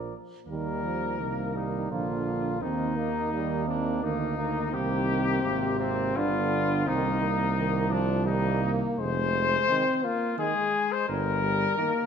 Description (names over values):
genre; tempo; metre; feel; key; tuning
classical, brass quintet; 85 BPM; 3/4; rubato; Eb major; A4 = 440 Hz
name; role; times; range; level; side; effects
warm trumpet; melody; 0.0-12.1 s; C4 to D5; -29 LUFS; left 4 dB; none
warm flugelhorn; second line; 0.0-11.9 s; Ab3 to Bb4; -35 LUFS; right 8 dB; none
clear French horn; accompaniment; 0.0-12.1 s; Eb3 to D4; -32 LUFS; left 2 dB; none
warm euphonium; accompaniment; 0.0-11.9 s; C3 to F3; -34 LUFS; right 4 dB; none
mellow tuba; bass; 0.0-11.7 s; F1 to Eb2; -30 LUFS; right 3 dB; none
room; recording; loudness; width
wet scoring stage reverb, RT60 1.5 s; none; -25 LUFS; side -7 dB against mid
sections
0.5-12.1 A section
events
none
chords
0.5 Eb; 1.9 Bb; 2.6 Eb5; 4.7 Cm; 6.2 G7; 6.9 Cm; 9.0 Fm7; 11.1 Eb/G